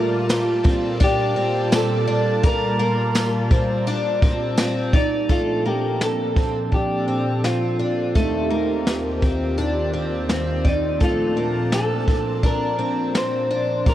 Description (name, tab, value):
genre	dream pop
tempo	84 BPM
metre	4/4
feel	straight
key	Bb major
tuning	A4 = 440 Hz
part	clean electric guitar	melody	0.0-13.9 s	Eb4 to C5	-24 LUFS	right 1 dB	spring reverb, digital delay, shimmer reverb
part	phased analog pad	sustained chords	0.0-13.9 s	Eb2 to A5	-24 LUFS	equal	phaser, chorus
part	picked twelve-string acoustic guitar	arpeggios	0.0-13.9 s	A3 to D5	-25 LUFS	left 3 dB	wide subtle chorus, digital delay, shimmer reverb
part	jazz brush drum kit	drums	0.3-13.9 s	hi-hat, kick drum, ride cymbal, snare drum, tambourine	-20 LUFS	equal	none
room	moderate huge ambient reverb, RT60 4.0 s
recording	worn, warbling old tape, cassette tape, warbly pitch drift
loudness	-18 LUFS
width	side -13 dB against mid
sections	0.0-5.3 A section; 5.3-13.9 B section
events	none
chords	0.0 Gm7/Bb; 5.3 Bbmaj7; 8.2 Eb6; 11.0 Bbmaj7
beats	0.29 1.01 1.72 | 2.44 3.15 3.87 4.58 | 5.29 6.01 6.72 7.44 | 8.15 8.87 9.58 10.29 | 11.01 11.72 12.44 13.15 | 13.87